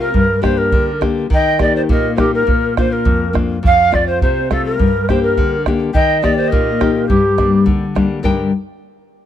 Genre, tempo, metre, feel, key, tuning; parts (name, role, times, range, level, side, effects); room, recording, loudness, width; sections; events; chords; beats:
andean folk, Andean ensemble; 104 BPM; 2/4; straight; G minor; A4 = 441 Hz
polished pan flute; melody; 0.0-7.6 s; G4 to F5; -17 LUFS; right 4 dB
breathy bright large quena; second line; 0.0-7.6 s; G4 to G5; -21 LUFS; left 5 dB
nylon-string guitar; accompaniment; 0.0-8.5 s; F2 to G5; -16 LUFS; left 4 dB
bombo; percussion; 0.1-8.5 s; -18 LUFS; right 1 dB
studio reverb; dry, close 1970s-style studio recording; -12 LUFS; side -10 dB against mid
0.0-8.2 A section; 8.2-9.3 B section
0.1 Gm; 1.3 Eb; 2.5 Bb; 3.6 F; 4.8 Gm; 5.9 Eb; 7.1 Gm
| 0.15 0.73 | 1.31 1.89 | 2.48 3.06 | 3.63 4.21 | 4.79 5.37 | 5.95 6.52 | 7.09 7.67 | 8.24